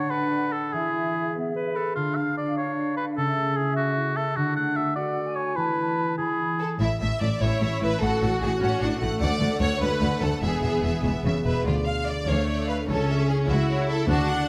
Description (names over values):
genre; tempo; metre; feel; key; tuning
cinematic, heroic adventure film score; 99 BPM (dotted quarters); 6/8; straight; A major; A4 = 441 Hz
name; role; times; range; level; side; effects
clear clarinet; second line; 0.0-6.6 s; B3 to B4; -32 LUFS; equal; none
clear oboe; second line; 0.0-6.8 s; F4 to F#5; -30 LUFS; equal; none
mellow hollow flute section; second line; 0.0-6.6 s; E5 to B5; -37 LUFS; equal; none
concert harp; arpeggios; 0.0-14.5 s; A2 to E5; -33 LUFS; equal; none
clear symphonic violin section; second line; 6.6-14.5 s; E4 to F#5; -31 LUFS; equal; none
rich studio violin section; melody; 6.8-14.5 s; C#5 to A5; -35 LUFS; equal; none
rich symphonic double bass section; bass; 6.8-14.5 s; E1 to D2; -30 LUFS; equal; none
warm symphonic cello section; bass; 6.8-14.5 s; C#2 to C#3; -31 LUFS; equal; none
clear symphonic viola section; accompaniment; 7.4-14.5 s; A3 to F#4; -32 LUFS; equal; none
room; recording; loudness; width
moderate scoring stage reverb, RT60 1.9 s; close, detailed microphones; -25 LUFS; mono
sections
0.0-6.8 A section; 6.8-14.5 A section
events
none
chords
0.0 D; 0.7 E; 2.0 Dm; 3.2 A/C#; 4.4 D; 5.6 Esus4; 6.2 E; 6.8 A; 8.0 F#m/A; 9.2 D; 10.4 E; 11.7 Dm; 12.9 A/C#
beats
0.10 | 0.72 1.33 | 1.95 2.56 | 3.17 3.77 | 4.36 4.96 | 5.56 6.18 | 6.80 7.41 | 8.02 8.61 | 9.21 9.81 | 10.43 11.04 | 11.66 12.28 | 12.88 13.49 | 14.08